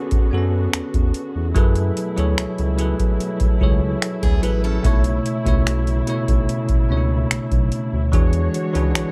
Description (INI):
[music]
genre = contemporary R&B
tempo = 73 BPM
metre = 4/4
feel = straight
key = F# minor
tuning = A4 = 439 Hz
[part]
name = bell-like tine electric piano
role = accompaniment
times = 0.0-9.1 s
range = B2 to C#5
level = -25 LUFS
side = equal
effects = none
[part]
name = dark studio string section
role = sustained chords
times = 0.0-9.1 s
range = B2 to C#5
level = -33 LUFS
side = equal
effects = none
[part]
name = smooth synth bass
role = bass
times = 0.1-9.0 s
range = A1 to F#2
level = -24 LUFS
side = equal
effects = none
[part]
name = booming analog drum machine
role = drums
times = 0.1-9.1 s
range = finger snaps, hi-hat, kick drum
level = -20 LUFS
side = equal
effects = none
[part]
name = picked steel-string acoustic guitar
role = arpeggios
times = 4.2-5.0 s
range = B3 to B4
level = -33 LUFS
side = equal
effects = delay
[sound]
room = little or no reverb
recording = dark, warm production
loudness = -20 LUFS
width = mono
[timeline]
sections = 0.0-9.1 A section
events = none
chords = 0.0 A69; 1.6 F#m11; 4.8 B9sus4; 8.1 E13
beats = 0.73 | 1.56 2.38 3.20 4.02 | 4.84 5.67 6.49 7.31 | 8.13 8.95